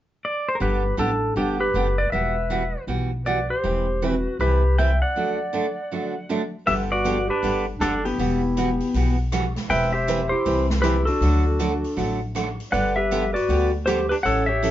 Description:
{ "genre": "country, western swing", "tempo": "158 BPM", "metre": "4/4", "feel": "swing 63% on 8ths", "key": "G major", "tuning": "A4 = 440 Hz", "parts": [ { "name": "clean lap steel guitar", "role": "melody", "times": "0.2-14.7 s", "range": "B3 to G5", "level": "-24 LUFS", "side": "left 1 dB", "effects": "none" }, { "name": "breathy clarinet", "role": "second line", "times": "0.6-14.7 s", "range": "D4 to E5", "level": "-29 LUFS", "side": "right 3 dB", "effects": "none" }, { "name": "picked steel-string acoustic guitar", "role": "accompaniment", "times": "0.6-14.7 s", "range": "D3 to B4", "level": "-27 LUFS", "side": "right 4 dB", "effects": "none" }, { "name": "upright bass", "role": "bass", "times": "0.6-14.7 s", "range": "E1 to D2", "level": "-24 LUFS", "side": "left 1 dB", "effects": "none" }, { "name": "swinging big-band drum kit", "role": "drums", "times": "6.7-14.7 s", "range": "hi-hat, rim click, snare drum", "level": "-36 LUFS", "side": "right 1 dB", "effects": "none" } ], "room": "moderate small room reverb, RT60 0.6 s", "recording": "band playing live in one room, nothing above 7.5 kHz", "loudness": "-20 LUFS", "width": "side -12 dB against mid", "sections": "0.6-6.7 A section; 6.7-14.7 B section", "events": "break 5.2-6.7", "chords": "0.0 N.C.; 0.6 G; 2.1 Emadd9; 3.6 Cmaj7/E; 5.2 D; 6.7 G; 8.2 Emadd9; 9.7 Cmaj7/E; 11.2 D; 12.7 G" }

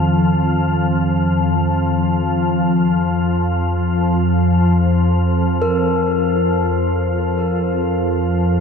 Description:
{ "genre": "dark ambient drone", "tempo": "free time", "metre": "none", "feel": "none", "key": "unclear", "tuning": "A4 = 441 Hz", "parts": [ { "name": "gamelan-type bronze metallophone", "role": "arpeggios", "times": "0.0-8.6 s", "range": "Eb3 to Bb4", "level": "-23 LUFS", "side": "left 1 dB", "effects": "diffuse ambient delay" }, { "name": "organ-like drone", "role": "drone", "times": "0.0-8.6 s", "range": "F2 to F3", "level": "-15 LUFS", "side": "left 1 dB", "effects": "ensemble chorus, built-in reverb" } ], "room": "wet cathedral reverb, RT60 5.5 s", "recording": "in a vast, echoing space", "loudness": "-15 LUFS", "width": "side -6 dB against mid", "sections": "0.0-8.6 A section", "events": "none", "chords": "0.0 F7(no3); 1.8 N.C." }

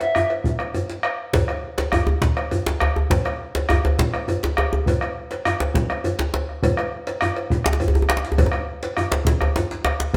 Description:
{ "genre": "west african traditional, West African drum ensemble", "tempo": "136 BPM (dotted quarters)", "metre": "12/8", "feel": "straight", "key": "none", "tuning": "none", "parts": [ { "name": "cowbell", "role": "percussion", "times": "0.0-10.2 s", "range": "none", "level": "-32 LUFS", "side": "equal", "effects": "none" }, { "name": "djembe", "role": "percussion", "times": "0.0-10.2 s", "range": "none", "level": "-29 LUFS", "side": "equal", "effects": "none" }, { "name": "bombo", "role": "percussion", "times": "0.1-10.2 s", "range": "none", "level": "-26 LUFS", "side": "equal", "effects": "none" }, { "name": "djembe", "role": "percussion", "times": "1.3-10.2 s", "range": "none", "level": "-24 LUFS", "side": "equal", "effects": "none" } ], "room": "wet stone room reverb, RT60 1.1 s", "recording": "band playing live in one room", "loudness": "-22 LUFS", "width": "mono", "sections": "0.0-1.3 A section; 1.3-10.2 B section", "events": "drum fill 8.0-8.4", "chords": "none" }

